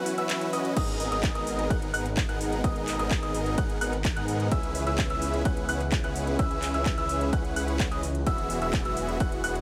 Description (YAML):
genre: EDM, festival progressive house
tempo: 128 BPM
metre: 4/4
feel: straight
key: G# minor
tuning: A4 = 440 Hz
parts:
  - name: lush unison pad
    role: sustained chords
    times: 0.0-9.6 s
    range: B2 to A#4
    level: -38 LUFS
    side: equal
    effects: chorus, sidechain pumping
  - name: clear baby grand piano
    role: arpeggios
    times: 0.0-9.6 s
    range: D#6 to F#6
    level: -36 LUFS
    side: equal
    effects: sidechain pumping, dub echo
  - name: supersaw chords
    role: riff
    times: 0.0-9.6 s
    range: B3 to F#5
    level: -34 LUFS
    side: equal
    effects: sidechain pumping, dub echo
  - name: house drum kit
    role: drums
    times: 0.1-9.6 s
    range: crash cymbal, handclaps, hi-hat, ride cymbal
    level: -38 LUFS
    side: equal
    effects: overdrive
  - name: detuned saw bass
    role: bass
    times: 0.8-9.6 s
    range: E1 to G#2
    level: -35 LUFS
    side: equal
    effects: chorus, sidechain pumping
  - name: electronic kick drum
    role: drums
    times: 0.8-9.3 s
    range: none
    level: -31 LUFS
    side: equal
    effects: overdrive
room: light reverb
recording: none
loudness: -27 LUFS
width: mono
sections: 0.8-9.6 A section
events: break 0.0-0.8; drop 0.8-9.6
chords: 0.0 F#7sus4; 0.8 G#madd9; 4.5 C#m7; 8.3 Eadd9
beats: 0.30 | 0.77 1.23 1.70 2.17 | 2.64 3.11 3.58 4.05 | 4.52 4.98 5.45 5.92 | 6.39 6.86 7.33 7.80 | 8.27 8.73 9.20